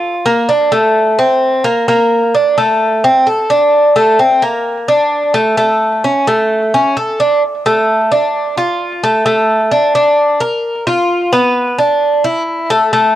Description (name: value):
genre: latin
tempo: 130 BPM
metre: 4/4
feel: straight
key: D minor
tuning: A4 = 440 Hz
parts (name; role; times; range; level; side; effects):
- Cuban tres; solo; 0.0-13.2 s; A3 to Bb4; -10 LUFS; equal; none
room: moderate small room reverb, RT60 0.6 s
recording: home recording on cassette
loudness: -10 LUFS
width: side -13 dB against mid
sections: 0.0-7.4 A section; 7.4-13.2 B section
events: none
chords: none